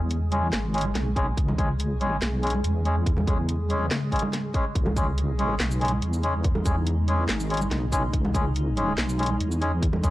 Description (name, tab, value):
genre	deep dubstep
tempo	142 BPM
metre	4/4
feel	half-time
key	C# minor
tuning	A4 = 441 Hz
part	granular cloud pad	sustained chords	0.0-10.1 s	C#3 to G#4	-33 LUFS	equal	built-in reverb
part	deep soft wobble bass	bass	0.0-10.1 s	G#1 to E2	-26 LUFS	equal	chorus, tube saturation
part	garage drum kit	drums	0.1-10.1 s	handclaps, hi-hat, shaker, snare drum	-31 LUFS	equal	none
part	melodica	stabs	0.3-10.1 s	G#3 to G#4	-29 LUFS	left 1 dB	low-pass filter, dub echo
part	congas and bongos	percussion	0.3-10.1 s	none	-33 LUFS	right 2 dB	dub echo
part	electronic kick drum	drums	1.2-10.1 s	none	-26 LUFS	equal	none
room	digital ambience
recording	dry, gritty hardware recording, transformer saturation, cassette tape, lossy compression artefacts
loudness	-22 LUFS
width	side -16 dB against mid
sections	0.0-10.1 A section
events	none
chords	0.0 C#5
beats	0.11 0.53 0.95 | 1.38 1.80 2.22 2.64 | 3.06 3.49 3.91 4.33 | 4.75 5.18 5.60 6.02 | 6.45 6.87 7.29 7.71 | 8.13 8.56 8.98 9.40 | 9.82